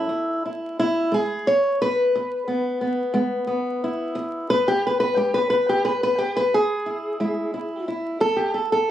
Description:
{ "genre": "acoustic country blues, solo or duo", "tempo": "59 BPM (dotted quarters)", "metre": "12/8", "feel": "straight", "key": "E major", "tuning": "A4 = 442 Hz", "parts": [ { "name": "fingerpicked old ladder-braced acoustic guitar", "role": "solo", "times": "0.0-8.9 s", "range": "E2 to C#5", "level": "-20 LUFS", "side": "equal", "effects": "none" } ], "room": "moderate small room reverb, RT60 0.5 s", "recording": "recorded on a phone in the room, studio ambience, vinyl crackle, compression", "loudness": "-20 LUFS", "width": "side -11 dB against mid", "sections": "0.0-8.9 A section", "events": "steel-string acoustic guitar solo 0.0-8.9", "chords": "0.1 E; 8.2 N.C.", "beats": "| 0.11 1.13 2.14 3.15 | 4.16 5.17 6.19 7.20 | 8.21" }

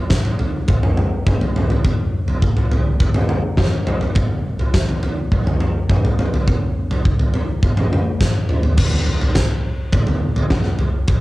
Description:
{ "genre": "rock", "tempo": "104 BPM", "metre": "4/4", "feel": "straight", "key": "none", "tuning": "none", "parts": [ { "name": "huge arena drum kit", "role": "drums", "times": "0.1-11.2 s", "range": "crash cymbal, kick drum, snare drum, toms", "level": "-16 LUFS", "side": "equal", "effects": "cassette tape" } ], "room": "light reverb", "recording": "home recording on cassette", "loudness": "-16 LUFS", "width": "side -19 dB against mid", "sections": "0.0-8.8 A section; 8.8-11.2 B section", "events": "drum fill 8.2-8.8", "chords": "none", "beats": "0.11 0.69 1.27 | 1.85 2.43 3.00 3.58 | 4.16 4.74 5.32 5.90 | 6.48 7.05 7.63 8.21 | 8.79 9.36 9.94 10.52 | 11.09" }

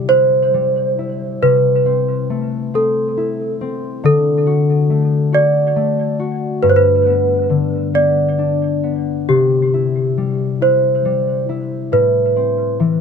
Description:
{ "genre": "children's music, lullaby", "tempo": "46 BPM (dotted quarters)", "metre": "6/8", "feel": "rubato", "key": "C major", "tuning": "A4 = 440 Hz", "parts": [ { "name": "celesta", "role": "melody", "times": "0.0-12.8 s", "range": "G4 to D5", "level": "-16 LUFS", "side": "right 2 dB", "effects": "tape echo" }, { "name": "concert harp", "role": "accompaniment", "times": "0.0-13.0 s", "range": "G2 to F#4", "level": "-18 LUFS", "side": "left 5 dB", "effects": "none" } ], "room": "light reverb", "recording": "close, detailed microphones", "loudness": "-14 LUFS", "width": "side -6 dB against mid", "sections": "0.0-13.0 A section", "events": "none", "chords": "0.0 C; 1.4 Amadd9/C; 4.0 D; 6.6 G; 9.3 C; 11.9 Amadd9", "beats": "0.08 | 1.42 2.74 | 4.04 5.33 | 6.62 7.94 | 9.29 10.62 | 11.93" }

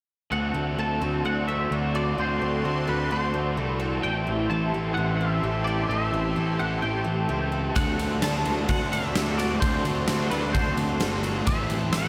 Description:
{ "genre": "rock, shoegaze and dream pop", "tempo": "129 BPM", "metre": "4/4", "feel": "straight", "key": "D mixolydian", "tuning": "A4 = 437 Hz", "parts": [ { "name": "twangy electric guitar", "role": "melody", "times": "0.3-12.1 s", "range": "B4 to A5", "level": "-33 LUFS", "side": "equal", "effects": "ensemble chorus, analog delay" }, { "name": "sweeping resonant pad", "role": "sustained chords", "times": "0.8-12.1 s", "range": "F#4 to C6", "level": "-35 LUFS", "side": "equal", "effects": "chorus" }, { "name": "picked twelve-string acoustic guitar", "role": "arpeggios", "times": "0.3-12.1 s", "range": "E3 to G4", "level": "-39 LUFS", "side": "equal", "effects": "none" }, { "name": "biting overdriven guitar", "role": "riff", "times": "0.3-12.1 s", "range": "A2 to A4", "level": "-35 LUFS", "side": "equal", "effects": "subtle chorus" }, { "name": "overdriven semi-hollow guitar", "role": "riff", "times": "0.3-12.1 s", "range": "A2 to F#4", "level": "-36 LUFS", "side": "equal", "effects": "none" }, { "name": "fuzz picked electric bass", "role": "bass", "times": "0.3-12.1 s", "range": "G1 to D2", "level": "-31 LUFS", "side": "equal", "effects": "overdrive" }, { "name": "crunchy overdriven guitar", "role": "riff", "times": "7.8-12.1 s", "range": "A2 to D4", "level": "-37 LUFS", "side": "equal", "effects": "none" }, { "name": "huge arena drum kit", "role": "drums", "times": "7.8-12.0 s", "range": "kick drum, ride cymbal, snare drum", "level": "-29 LUFS", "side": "equal", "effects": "none" }, { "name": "tambourine", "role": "percussion", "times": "7.8-12.0 s", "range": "none", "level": "-47 LUFS", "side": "equal", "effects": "none" } ], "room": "moderate plate reverb, RT60 1.8 s, studio reverb", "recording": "dreamy mix soaked in reverb", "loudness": "-26 LUFS", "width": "mono", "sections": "0.3-12.1 A section", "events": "none", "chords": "0.3 D7; 4.0 Am7; 7.8 D7; 11.5 Am7", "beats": "| 0.32 0.78 1.25 1.72 | 2.19 2.65 3.12 3.58 | 4.05 4.51 4.98 5.44 | 5.91 6.37 6.83 7.30 | 7.76 8.23 8.69 9.15 | 9.62 10.08 10.54 11.01 | 11.47 11.94" }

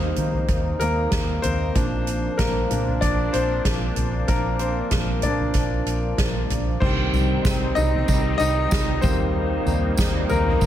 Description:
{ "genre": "piano-driven pop", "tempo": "95 BPM", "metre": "4/4", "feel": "swing 56% on 16ths", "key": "C minor", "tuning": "A4 = 439 Hz", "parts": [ { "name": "clear baby grand piano", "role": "accompaniment", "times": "0.0-10.7 s", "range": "Eb3 to Eb5", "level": "-24 LUFS", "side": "left 1 dB", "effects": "none" }, { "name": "sweeping resonant pad", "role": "sustained chords", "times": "0.0-10.7 s", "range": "Eb3 to Eb4", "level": "-30 LUFS", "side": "right 1 dB", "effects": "chorus" }, { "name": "vintage muted fingered electric bass", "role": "bass", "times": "0.0-10.7 s", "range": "Bb1 to Eb3", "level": "-26 LUFS", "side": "equal", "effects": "none" }, { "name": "soft-mallet drum kit", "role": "drums", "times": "0.2-10.7 s", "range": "crash cymbal, hi-hat, kick drum, ride cymbal, snare drum, toms", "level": "-24 LUFS", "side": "equal", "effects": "none" }, { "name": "tambourine", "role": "percussion", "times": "7.1-10.7 s", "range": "none", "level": "-37 LUFS", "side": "right 5 dB", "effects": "none" } ], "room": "light reverb, small room ambience", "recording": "none", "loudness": "-20 LUFS", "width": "side -11 dB against mid", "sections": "0.0-6.8 A section; 6.8-10.7 B section", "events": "grand piano solo 0.0-6.8, 6.8-10.7", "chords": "0.0 Eb; 1.8 Bb; 6.8 Cm; 9.0 Eb", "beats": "0.49 1.12 | 1.75 2.39 3.02 3.65 | 4.29 4.92 5.55 6.19 | 6.82 7.45 8.09 8.72 | 9.35 9.98 10.62" }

